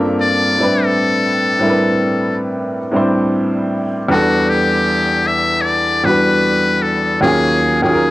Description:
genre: R&B.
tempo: 77 BPM.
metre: 4/4.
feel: swing 59% on 16ths.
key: E minor.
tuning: A4 = 440 Hz.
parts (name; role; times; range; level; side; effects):
clear upright piano; accompaniment; 0.0-8.1 s; D#2 to F#5; -15 LUFS; equal; cassette tape.
trumpet with metal mute; melody; 0.2-8.1 s; F#4 to E5; -16 LUFS; left 3 dB; cassette tape.
room: wet small room reverb, RT60 0.6 s.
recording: home recording on cassette.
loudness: -13 LUFS.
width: side -17 dB against mid.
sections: 0.0-8.1 A section.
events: none.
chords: 0.0 Gm11; 0.6 Am11; 4.1 Em11; 7.2 D#m11.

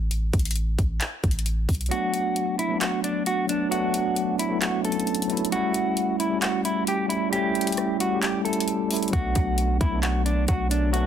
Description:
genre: hip hop, trap.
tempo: 133 BPM.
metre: 4/4.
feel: half-time.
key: B minor.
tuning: A4 = 440 Hz.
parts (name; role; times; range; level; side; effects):
warm 808-style bass; bass; 0.0-1.9, 9.1-11.1 s; A1 to B1; -25 LUFS; equal; none.
trap drum kit; drums; 0.1-11.0 s; handclaps, hi-hat, kick drum, rim click; -27 LUFS; equal; none.
clean electric guitar; melody; 1.9-11.1 s; D4 to A4; -27 LUFS; right 1 dB; low-pass filter.
tine electric piano; accompaniment; 1.9-11.1 s; F#3 to G4; -26 LUFS; equal; medium stereo tremolo, low-pass filter.
room: digital ambience.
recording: dense, heavily limited modern master.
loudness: -22 LUFS.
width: side -9 dB against mid.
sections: 0.0-11.1 A section.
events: break 0.0-1.9; kick muted 1.9-9.1.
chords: 0.0 N.C.; 1.9 Bm7; 5.5 A7; 9.1 Bm7.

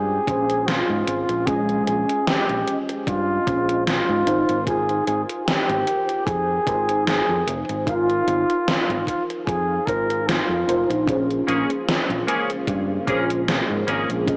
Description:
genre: vaporwave.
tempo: 75 BPM.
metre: 4/4.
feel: swing 54% on 16ths.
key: Bb dorian.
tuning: A4 = 440 Hz.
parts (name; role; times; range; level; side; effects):
mellow flugelhorn; melody; 0.0-11.1 s; F4 to Bb4; -22 LUFS; equal; vintage 12-bit sampler grit, tape echo.
mellow FM electric piano; accompaniment; 0.0-14.4 s; Ab3 to F5; -25 LUFS; equal; phaser, ensemble chorus, tape echo.
fingered electric bass; bass; 0.0-14.4 s; F1 to Ab2; -28 LUFS; equal; none.
electronic kick drum; drums; 0.3-14.4 s; none; -28 LUFS; equal; overdrive.
gated 80s digital drum machine; drums; 0.3-14.4 s; hi-hat, snare drum; -25 LUFS; equal; gated reverb, gated reverb snare, overdrive.
soft string machine; sustained chords; 11.7-14.4 s; Db3 to F4; -29 LUFS; equal; phaser, ensemble chorus.
semi-hollow electric guitar; riff; 11.5-14.1 s; Bb3 to Ab4; -25 LUFS; equal; ensemble chorus, vintage 12-bit sampler grit, tape echo.
room: moderate huge ambient reverb, RT60 4.8 s.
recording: cassette tape, small speaker sound.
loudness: -19 LUFS.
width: side -32 dB against mid.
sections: 0.0-14.4 A section.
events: none.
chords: 0.0 Bbm7; 4.3 Ab6; 11.1 Bbm7.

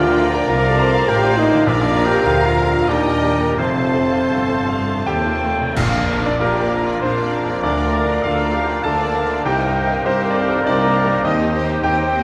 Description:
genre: classical, romantic movement for piano and orchestra.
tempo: 76-104 BPM.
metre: 3/4.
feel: rubato.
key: Bb major.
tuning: A4 = 442 Hz.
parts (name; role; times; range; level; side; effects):
clear baby grand piano; melody; 0.0-12.2 s; Bb1 to Bb5; -23 LUFS; equal; none.
rich symphonic violin section; melody; 0.0-12.2 s; Bb4 to A5; -35 LUFS; equal; none.
bright clarinet; second line; 0.0-12.2 s; D4 to C5; -30 LUFS; equal; none.
bright symphonic violin section; second line; 0.0-12.2 s; C4 to F5; -31 LUFS; equal; none.
flute section; second line; 0.0-12.2 s; Bb4 to Bb5; -30 LUFS; equal; none.
mellow oboe; second line; 0.0-12.2 s; Bb4 to Bb5; -28 LUFS; equal; none.
rich symphonic viola section; accompaniment; 0.0-12.2 s; D4 to D5; -30 LUFS; equal; none.
warm bassoon; accompaniment; 0.0-12.2 s; F3 to C4; -30 LUFS; equal; none.
mellow French horn section; sustained chords; 0.0-12.2 s; Eb3 to Bb4; -25 LUFS; equal; none.
clear tuba; bass; 0.0-12.2 s; F1 to Eb2; -30 LUFS; equal; none.
rich symphonic cello section; bass; 0.0-12.2 s; C2 to D3; -29 LUFS; equal; none.
rich symphonic double bass section; bass; 0.0-12.2 s; F1 to Eb2; -29 LUFS; equal; none.
cymbal swell, clash cymbals and concert bass drum; percussion; 1.7-7.0 s; none; -30 LUFS; equal; none.
timpani; percussion; 1.7-2.5 s; Bb2; -30 LUFS; equal; none.
warm trumpet section; stabs; 5.8-12.2 s; Bb4 to C5; -30 LUFS; equal; none.
room: wet scoring stage reverb, RT60 1.5 s.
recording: vinyl crackle.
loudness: -17 LUFS.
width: mono.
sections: 0.0-5.8 A section; 5.8-12.2 B section.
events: band accent 5.8-6.4.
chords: 0.0 Bb; 2.9 Ebmaj7; 3.6 F; 5.8 Bb; 7.6 Bb/D; 9.4 Cm7; 11.2 Cm/Eb.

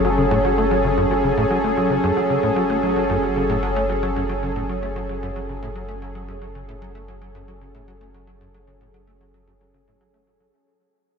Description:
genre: ambient, sequencer-driven space music.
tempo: 113 BPM.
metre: 4/4.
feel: straight.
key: F# minor.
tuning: A4 = 440 Hz.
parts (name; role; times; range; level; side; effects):
lush unison pad; sustained chords; 0.0-10.5 s; F#3 to A4; -20 LUFS; equal; chorus.
tight sequencer bass; riff; 0.0-10.5 s; F#2 to A3; -25 LUFS; left 1 dB; lush chorus, tape echo.
warm sub bass; bass; 0.0-10.5 s; F#1; -30 LUFS; equal; none.
room: wet huge ambient reverb, RT60 8.9 s.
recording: dark, warm production.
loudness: -18 LUFS.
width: side -6 dB against mid.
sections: 0.0-10.5 A section.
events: fade-out on analog synth bass 0.0-10.5; fade-out 0.0-10.5.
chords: 0.0 F#madd9.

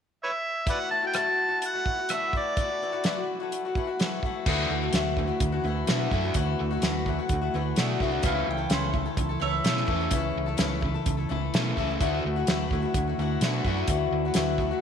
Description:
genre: folk rock and heartland rock.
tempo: 127 BPM.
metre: 4/4.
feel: straight.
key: D major.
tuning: A4 = 441 Hz.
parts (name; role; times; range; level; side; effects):
overdriven harmonica; melody; 0.2-3.3 s; B4 to A5; -27 LUFS; right 1 dB; none.
picked swing-style acoustic guitar; accompaniment; 0.7-14.8 s; C#3 to A4; -29 LUFS; left 6 dB; none.
damped 70s drum kit; drums; 0.7-14.7 s; crash cymbal, hi-hat, kick drum, rim click, snare drum; -28 LUFS; right 1 dB; none.
crunchy overdriven guitar; riff; 4.5-14.8 s; C#3 to D4; -31 LUFS; right 1 dB; none.
fingered electric bass; bass; 4.5-14.7 s; C2 to B2; -30 LUFS; right 2 dB; none.
mandolin; second line; 8.3-10.8 s; C5 to G5; -32 LUFS; right 6 dB; none.
room: wet echo chamber reverb, RT60 1.8 s, studio reverb.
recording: 1960s-style stereo with parts hard left and right.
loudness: -24 LUFS.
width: side -7 dB against mid.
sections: 0.7-4.5 A section; 4.5-14.8 B section.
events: none.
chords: 0.0 N.C.; 0.7 Dadd9; 8.2 A/C#; 12.0 Dadd9.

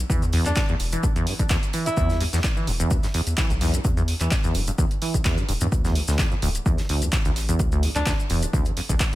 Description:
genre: acid house.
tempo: 128 BPM.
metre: 4/4.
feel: swing 54% on 16ths.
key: E phrygian.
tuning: A4 = 439 Hz.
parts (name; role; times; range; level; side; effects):
round analog bass; bass; 0.0-9.0 s; D1 to G2; -26 LUFS; equal; sidechain pumping.
liquid acid bass; riff; 0.1-9.2 s; D2 to E3; -26 LUFS; equal; tube saturation, wide subtle chorus.
electronic kick drum; drums; 0.1-9.1 s; none; -23 LUFS; equal; none.
gated 80s drum kit; drums; 0.1-9.1 s; hi-hat, snare drum; -38 LUFS; right 2 dB; sidechain pumping on hats, high-pass filter on hats, high-pass filter on snare, high-pass filter on room.
maracas; percussion; 0.1-9.2 s; none; -35 LUFS; left 4 dB; none.
punchy analog drum machine; drums; 0.2-9.2 s; handclaps, hi-hat; -29 LUFS; right 1 dB; none.
warm alto saxophone; melody; 0.5-2.2, 8.0-8.1 s; D4 to E4; -31 LUFS; equal; dub echo.
room: studio reverb.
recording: none.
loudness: -20 LUFS.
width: side -16 dB against mid.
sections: 0.0-9.2 A section.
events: none.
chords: 0.0 Em; 5.7 Dm.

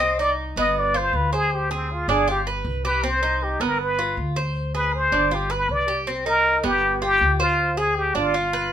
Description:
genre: latin.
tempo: 158 BPM.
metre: 4/4.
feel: straight.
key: C harmonic minor.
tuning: A4 = 439 Hz.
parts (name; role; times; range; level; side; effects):
trumpet with plunger mute; melody; 0.0-8.7 s; C4 to Eb5; -21 LUFS; left 1 dB; none.
Cuban tres; arpeggios; 0.0-8.7 s; B3 to C5; -25 LUFS; right 4 dB; none.
upright bass; bass; 0.0-8.7 s; G1 to D2; -28 LUFS; left 1 dB; none.
room: moderate studio reverb, RT60 0.6 s.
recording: minimal, uncompressed stereo recording.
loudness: -19 LUFS.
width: side -9 dB against mid.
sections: 0.0-6.1 A section; 6.1-8.7 B section.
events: muted trumpet solo 0.0-6.1.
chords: 0.0 Cm; 0.8 G7; 1.5 Fm69; 2.3 G7; 3.0 Cm; 3.8 G7; 4.6 Gadd11; 5.3 G7; 6.1 Cm7; 6.8 G7; 7.6 Fm69.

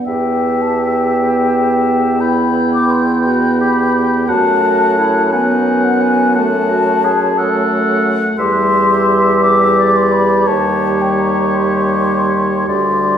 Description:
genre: classical, slow romantic movement for wind quintet.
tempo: 57 BPM (dotted quarters).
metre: 12/8.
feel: uneven beats, rubato.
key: E minor.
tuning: A4 = 440 Hz.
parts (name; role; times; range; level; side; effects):
mellow hollow wooden flute; melody; 0.0-13.2 s; F#5 to D6; -17 LUFS; left 4 dB; none.
warm French horn; accompaniment; 0.0-13.2 s; G3 to B3; -18 LUFS; equal; none.
warm oboe; second line; 0.1-13.2 s; Db5 to G5; -20 LUFS; left 2 dB; none.
clear clarinet; accompaniment; 0.1-13.2 s; D#4 to A4; -21 LUFS; right 5 dB; none.
clear bassoon; bass; 0.1-13.2 s; D2 to F#2; -18 LUFS; right 2 dB; none.
room: wet recital hall reverb, RT60 1.6 s.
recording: recorded in a church or concert hall.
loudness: -11 LUFS.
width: side -8 dB against mid.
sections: 0.1-13.2 A section.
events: none.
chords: 0.1 Em; 4.3 D#dim/F#; 8.4 C/E; 10.5 Eb7.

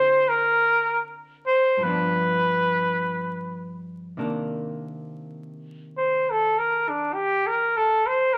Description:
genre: jazz ballad.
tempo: 51 BPM.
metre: 4/4.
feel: swing 67% on 8ths.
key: unclear.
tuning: A4 = 439 Hz.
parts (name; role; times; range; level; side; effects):
clear flugelhorn; melody; 0.0-8.4 s; D4 to C5; -23 LUFS; equal; none.
hollow-body jazz guitar; accompaniment; 0.0-8.4 s; G2 to Ab4; -34 LUFS; equal; none.
room: moderate large studio reverb, RT60 1.2 s.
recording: vinyl crackle.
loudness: -23 LUFS.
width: mono.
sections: 0.0-4.2 A section; 4.2-8.4 B section.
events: flugelhorn solo 4.2-8.4.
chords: 0.0 Dm7b5; 1.8 G7; 4.2 Cm9.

